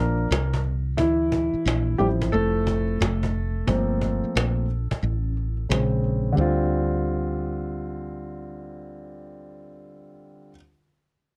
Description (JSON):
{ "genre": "hip hop, jazz-hop", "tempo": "89 BPM", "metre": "4/4", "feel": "swing 65% on 16ths", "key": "D minor", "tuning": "A4 = 440 Hz", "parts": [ { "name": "dark grand piano", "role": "accompaniment", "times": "0.0-10.5 s", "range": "Db3 to Bb4", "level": "-28 LUFS", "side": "equal", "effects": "none" }, { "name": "woody fretless electric bass", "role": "bass", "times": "0.0-10.5 s", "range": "F1 to D2", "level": "-28 LUFS", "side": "equal", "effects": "ensemble chorus" }, { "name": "cajon", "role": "drums", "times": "0.2-6.2 s", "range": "none", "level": "-31 LUFS", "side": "equal", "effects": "none" } ], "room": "little or no reverb", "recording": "dry, close 1970s-style studio recording", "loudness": "-24 LUFS", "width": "mono", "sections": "0.0-6.4 A section; 6.4-9.1 B section", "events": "grand piano solo 0.0-6.4; kick muted 5.0-6.4", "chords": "0.0 C7sus4; 1.0 Dm9; 3.7 Gm11; 5.7 Bbm7; 6.4 Dm7" }